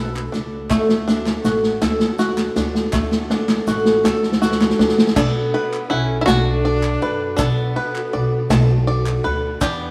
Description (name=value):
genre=indie folk with a building arrangement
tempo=54 BPM (dotted quarters)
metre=6/8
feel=straight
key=unclear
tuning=A4 = 440 Hz
part: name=picked twelve-string acoustic guitar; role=accompaniment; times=0.0-9.9 s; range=D3 to B4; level=-26 LUFS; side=equal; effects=none
part: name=bluegrass banjo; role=arpeggios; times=0.0-9.9 s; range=A3 to A5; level=-28 LUFS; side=equal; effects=slapback echo
part: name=upright bass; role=bass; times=0.0-9.9 s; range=A1 to F#2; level=-25 LUFS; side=equal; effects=none
part: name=group handclap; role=percussion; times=0.2-9.8 s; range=none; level=-35 LUFS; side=equal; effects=none
part: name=unplugged drum kit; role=drums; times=0.3-9.8 s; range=crash cymbal, hi-hat, kick drum, ride cymbal, snare drum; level=-22 LUFS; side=equal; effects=none
part: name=tube shaker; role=percussion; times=0.7-9.8 s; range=none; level=-45 LUFS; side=equal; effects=none
part: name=bluegrass banjo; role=melody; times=5.2-9.9 s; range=D4 to F#4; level=-26 LUFS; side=equal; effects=none
part: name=warm trumpet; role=second line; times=5.2-9.9 s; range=B3 to D4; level=-31 LUFS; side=equal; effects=slapback echo
room=moderate lush hall reverb, RT60 2.5 s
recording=rough home demo mix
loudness=-19 LUFS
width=mono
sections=0.0-5.2 A section; 5.2-9.9 B section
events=build-up 0.0-5.2; drum fill 0.0-5.2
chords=0.0 Bm7; 0.7 D; 5.2 Bm7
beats=| 0.71 1.82 | 2.94 4.05 | 5.16 6.28 | 7.39 8.50 | 9.61